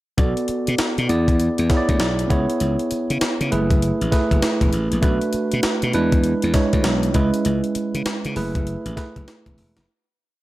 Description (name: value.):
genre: R&B, new jack swing.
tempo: 99 BPM.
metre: 4/4.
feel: swing 63% on 16ths.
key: B dorian.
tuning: A4 = 440 Hz.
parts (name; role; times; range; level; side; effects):
tine electric piano; accompaniment; 0.2-9.9 s; G#3 to D5; -21 LUFS; right 2 dB; none.
glassy slap bass; bass; 0.2-9.9 s; E1 to C#3; -22 LUFS; left 1 dB; none.
breakbeat sampler-style drum kit; drums; 0.2-9.9 s; hi-hat, kick drum, snare drum; -22 LUFS; left 1 dB; gated reverb.
room: light reverb.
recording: none.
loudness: -18 LUFS.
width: side -16 dB against mid.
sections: 0.2-9.9 verse.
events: fade-out 7.5-9.9.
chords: 0.2 Bm7; 1.1 E7; 2.3 C#m7; 3.5 F#m11; 5.0 Bm7; 5.9 E7; 7.2 C#m7; 8.4 F#m11.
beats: | 0.18 0.79 1.39 2.00 | 2.60 3.21 3.82 4.42 | 5.03 5.63 6.24 6.85 | 7.45 8.06 8.66 9.27.